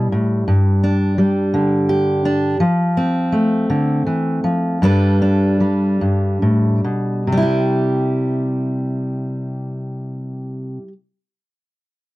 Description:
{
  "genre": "folk, solo fingerstyle acoustic guitar",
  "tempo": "46-57 BPM (dotted quarters)",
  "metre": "6/8",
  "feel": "rubato",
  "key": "C major",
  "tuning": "A4 = 439 Hz",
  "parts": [
    { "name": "fingerpicked steel-string acoustic guitar", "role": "solo", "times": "0.0-10.9 s", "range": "G2 to B4", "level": "-16 LUFS", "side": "equal", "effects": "none" }
  ],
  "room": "light reverb",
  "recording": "dry, close 1970s-style studio recording",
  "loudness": "-15 LUFS",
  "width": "side -19 dB against mid",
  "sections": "0.0-7.3 A section; 7.3-12.2 B section",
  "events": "slowing down 2.6-7.3",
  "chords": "0.5 G5; 2.6 F; 4.8 Gadd9; 7.3 C"
}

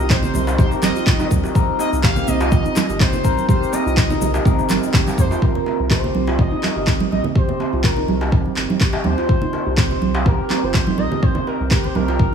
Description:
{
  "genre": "afro house",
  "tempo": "124 BPM",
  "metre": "4/4",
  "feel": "swing 53% on 16ths",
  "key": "C minor",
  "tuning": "A4 = 441 Hz",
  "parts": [
    { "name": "expressive portamento lead", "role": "melody", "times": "0.0-12.3 s", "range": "Bb4 to F5", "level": "-25 LUFS", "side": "left 1 dB", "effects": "lush chorus, tape echo" },
    { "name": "handpan", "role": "arpeggios", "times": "0.0-12.3 s", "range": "C4 to Bb4", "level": "-24 LUFS", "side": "right 4 dB", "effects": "sidechain pumping, low-pass filter, tape echo" },
    { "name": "overdriven tine electric piano", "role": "stabs", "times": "0.0-5.4 s", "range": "C4 to Bb4", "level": "-25 LUFS", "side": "left 6 dB", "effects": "phaser, sidechain pumping, tape echo" },
    { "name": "round analog bass", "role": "bass", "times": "0.0-12.3 s", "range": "G1 to F2", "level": "-24 LUFS", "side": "equal", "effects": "sidechain pumping" },
    { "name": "electronic handclaps", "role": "drums", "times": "0.1-11.8 s", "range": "none", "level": "-25 LUFS", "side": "equal", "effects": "none" },
    { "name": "electronic kick drum", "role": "drums", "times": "0.1-12.3 s", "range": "none", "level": "-17 LUFS", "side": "equal", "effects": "none" },
    { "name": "egg shaker", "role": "percussion", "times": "0.1-5.4 s", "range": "none", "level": "-35 LUFS", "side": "left 6 dB", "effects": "none" },
    { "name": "congas", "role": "percussion", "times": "0.2-12.1 s", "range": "none", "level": "-24 LUFS", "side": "right 6 dB", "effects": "none" },
    { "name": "djembe", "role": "percussion", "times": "0.3-12.3 s", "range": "none", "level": "-30 LUFS", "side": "left 3 dB", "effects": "none" }
  ],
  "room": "small room reverb",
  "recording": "studio ambience",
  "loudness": "-15 LUFS",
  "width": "side -7 dB against mid",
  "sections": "0.0-5.4 A section; 5.4-12.3 B section",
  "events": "drop 0.0-5.4; filter sweep on handpan 5.4-12.3",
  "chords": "0.0 Cm7; 5.4 C7(no3)"
}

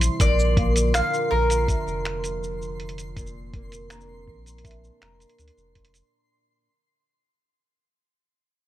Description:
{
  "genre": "folktronica",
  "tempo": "81 BPM",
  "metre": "4/4",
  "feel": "straight",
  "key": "Bb lydian",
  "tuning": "A4 = 440 Hz",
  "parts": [
    { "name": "warbly tape-like pad", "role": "sustained chords", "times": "0.0-6.1 s", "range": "C3 to F4", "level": "-36 LUFS", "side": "equal", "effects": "chorus, built-in reverb" },
    { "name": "nylon-string guitar", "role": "arpeggios", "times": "0.0-6.7 s", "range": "Bb2 to C5", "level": "-31 LUFS", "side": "right 1 dB", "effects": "none" },
    { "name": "warm sub bass", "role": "bass", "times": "0.0-6.0 s", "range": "F1 to D2", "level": "-25 LUFS", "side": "equal", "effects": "tube saturation" },
    { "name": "lo-fi sampler-style drum kit", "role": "drums", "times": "0.0-6.1 s", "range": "finger snaps, hi-hat, shaker", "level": "-31 LUFS", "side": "equal", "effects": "none" },
    { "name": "twinkling granular texture", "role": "texture", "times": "0.0-6.1 s", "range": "C6", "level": "-40 LUFS", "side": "right 1 dB", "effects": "built-in reverb" },
    { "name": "mandolin", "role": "melody", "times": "0.2-5.3 s", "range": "Bb4 to F5", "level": "-26 LUFS", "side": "equal", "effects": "none" },
    { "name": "marimba with medium mallets", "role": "second line", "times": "0.2-5.4 s", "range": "Bb4 to Bb5", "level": "-33 LUFS", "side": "right 2 dB", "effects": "ping-pong delay" },
    { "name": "electronic kick drum", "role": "drums", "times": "0.2-5.9 s", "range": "none", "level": "-24 LUFS", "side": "equal", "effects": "none" }
  ],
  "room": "moderate studio reverb, RT60 0.6 s",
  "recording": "none",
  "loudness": "-20 LUFS",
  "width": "side -13 dB against mid",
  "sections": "0.0-6.1 A section",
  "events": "fade-out 0.0-6.1",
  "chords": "0.2 Bb"
}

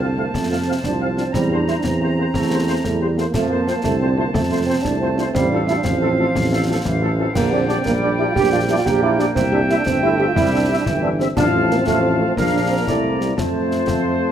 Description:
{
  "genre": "military-style march for wind band",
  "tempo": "120 BPM (dotted quarters)",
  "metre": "6/8",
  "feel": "straight",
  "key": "F major",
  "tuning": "A4 = 440 Hz",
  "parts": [
    { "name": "warm trumpet section", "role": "melody", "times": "0.0-14.3 s", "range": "A4 to F5", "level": "-28 LUFS", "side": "left 1 dB", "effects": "none" },
    { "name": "mellow woodwind section", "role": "second line", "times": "0.0-14.3 s", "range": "C5 to Bb5", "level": "-26 LUFS", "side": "left 1 dB", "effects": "none" },
    { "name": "warm euphonium", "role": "second line", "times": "0.0-14.3 s", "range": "F3 to G4", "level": "-22 LUFS", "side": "right 4 dB", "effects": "none" },
    { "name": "mellow French horn section", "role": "accompaniment", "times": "0.0-14.3 s", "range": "F3 to G4", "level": "-26 LUFS", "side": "left 8 dB", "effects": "none" },
    { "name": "clear trombone section", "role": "sustained chords", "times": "0.0-14.3 s", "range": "C3 to Bb3", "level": "-27 LUFS", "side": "right 3 dB", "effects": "none" },
    { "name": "mellow tuba", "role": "bass", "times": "0.0-14.3 s", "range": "G1 to F2", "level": "-21 LUFS", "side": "right 2 dB", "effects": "none" },
    { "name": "concert snare drum, concert bass drum and clash cymbals", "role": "drums", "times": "0.3-14.0 s", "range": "none", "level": "-26 LUFS", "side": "left 2 dB", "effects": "none" }
  ],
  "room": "moderate recital hall reverb, RT60 1.6 s",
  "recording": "close, detailed microphones",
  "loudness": "-16 LUFS",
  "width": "side -9 dB against mid",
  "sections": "0.0-14.3 A section",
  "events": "none",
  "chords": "0.0 F; 1.3 C7/E; 3.3 F; 5.3 F/A; 7.4 Gm/Bb; 9.4 C; 11.4 F/A; 12.4 Bb; 12.9 C9; 13.4 F"
}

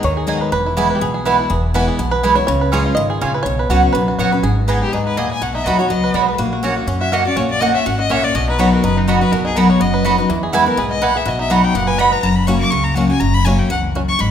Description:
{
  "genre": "bluegrass",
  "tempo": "246 BPM",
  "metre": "4/4",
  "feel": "swing 55% on 8ths",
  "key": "B major",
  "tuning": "A4 = 437 Hz",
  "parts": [
    { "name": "bluegrass banjo", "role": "melody", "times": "0.0-14.0 s", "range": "B3 to D#5", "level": "-22 LUFS", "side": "right 2 dB", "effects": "none" },
    { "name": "picked steel-string acoustic guitar", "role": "accompaniment", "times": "0.0-14.3 s", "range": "E2 to G#4", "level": "-18 LUFS", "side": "left 2 dB", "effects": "none" },
    { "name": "upright bass", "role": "bass", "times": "0.0-14.3 s", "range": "E1 to F#2", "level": "-21 LUFS", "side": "equal", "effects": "none" },
    { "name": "mandolin", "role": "stabs", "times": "0.3-12.1 s", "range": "A#3 to B5", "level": "-20 LUFS", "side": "right 4 dB", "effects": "none" },
    { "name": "clear fiddle", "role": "melody", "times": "4.8-14.3 s", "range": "D#4 to D6", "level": "-20 LUFS", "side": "left 4 dB", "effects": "none" }
  ],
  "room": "wet recital hall reverb, RT60 1.9 s",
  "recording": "minimal, uncompressed stereo recording",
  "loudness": "-14 LUFS",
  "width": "side -9 dB against mid",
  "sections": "0.0-4.4 A section; 4.4-12.2 A section; 12.2-14.3 A section",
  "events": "five-string banjo solo 0.0-4.4; fiddle solo 4.4-14.3",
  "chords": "0.0 G#m; 0.5 E; 2.5 C#; 3.5 Bsus2; 4.4 G#m; 5.4 B; 6.4 F#/A#; 8.3 B; 10.3 E; 11.3 B; 12.2 F#"
}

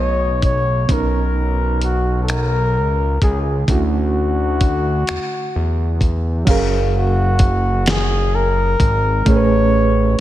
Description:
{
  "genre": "slow six-eight R&B",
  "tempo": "43 BPM (dotted quarters)",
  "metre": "6/8",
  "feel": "straight",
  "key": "F# major",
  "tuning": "A4 = 440 Hz",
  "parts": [
    { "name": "warm flugelhorn", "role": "melody", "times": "0.0-10.2 s", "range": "F#4 to C#5", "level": "-21 LUFS", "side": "left 2 dB", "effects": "ping-pong delay" },
    { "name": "reed electric piano", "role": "accompaniment", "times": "0.0-10.2 s", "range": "A2 to E#5", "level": "-22 LUFS", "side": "right 3 dB", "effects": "fast tremolo" },
    { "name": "fat analog bass", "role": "bass", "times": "0.0-10.2 s", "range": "F#1 to E2", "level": "-18 LUFS", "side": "equal", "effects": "none" },
    { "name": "dusty soul sampler-style drum kit", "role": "drums", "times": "0.4-9.5 s", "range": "crash cymbal, finger snaps, hi-hat, kick drum, snare drum", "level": "-18 LUFS", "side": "equal", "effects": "none" }
  ],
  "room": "moderate lush hall reverb, RT60 2.0 s",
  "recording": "dreamy mix soaked in reverb",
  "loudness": "-15 LUFS",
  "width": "side -13 dB against mid",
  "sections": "0.0-6.5 A section; 6.5-10.2 B section",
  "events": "none",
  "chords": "0.0 Amaj9; 0.9 Bmaj9; 3.7 Dmaj9; 6.5 F#maj9; 9.3 Amaj9"
}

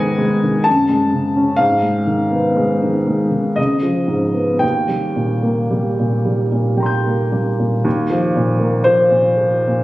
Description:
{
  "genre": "classical, impressionist solo piano",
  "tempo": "53-64 BPM",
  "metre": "3/4",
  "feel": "rubato",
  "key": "Eb major",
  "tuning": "A4 = 440 Hz",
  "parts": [
    { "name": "warm baby grand piano", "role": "solo", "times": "0.0-9.8 s", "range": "Db2 to Bb6", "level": "-14 LUFS", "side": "equal", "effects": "none" }
  ],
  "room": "moderate recital hall reverb, RT60 1.4 s",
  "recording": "recorded on a phone in the room, studio reverb",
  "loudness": "-14 LUFS",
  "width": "side -17 dB against mid",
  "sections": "0.0-7.9 A section; 7.9-9.8 B section",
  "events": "none",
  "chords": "0.0 Abm9; 0.7 Gbmadd9; 1.6 Abm6; 3.6 Db9; 4.6 Eb6; 7.9 Ebsus2"
}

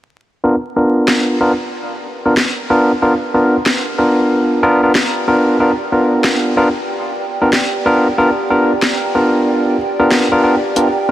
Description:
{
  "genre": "glitch hop",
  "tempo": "93 BPM",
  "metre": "4/4",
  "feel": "swing 63% on 16ths",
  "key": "unclear",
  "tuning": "A4 = 440 Hz",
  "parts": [
    { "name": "barky tine electric piano", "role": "stabs", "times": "0.4-11.1 s", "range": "B3 to A#4", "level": "-13 LUFS", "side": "equal", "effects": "overdrive, low-pass filter, diffuse ambient delay" },
    { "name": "warbly tape-like pad", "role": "texture", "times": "1.6-11.1 s", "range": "G4 to A5", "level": "-23 LUFS", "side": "right 2 dB", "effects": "chorus, built-in reverb" },
    { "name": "drum and bass drum kit", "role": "drums", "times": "1.1-10.9 s", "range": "hi-hat, snare drum", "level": "-20 LUFS", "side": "equal", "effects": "none" }
  ],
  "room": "moderate huge ambient reverb, RT60 5.0 s",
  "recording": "dreamy mix soaked in reverb, vinyl crackle",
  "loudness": "-12 LUFS",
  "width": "side -13 dB against mid",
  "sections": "0.4-11.1 A section",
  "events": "fade-in on ambient pad 0.4-11.1; filter sweep on tine electric piano 0.4-11.1",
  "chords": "0.4 G7#9"
}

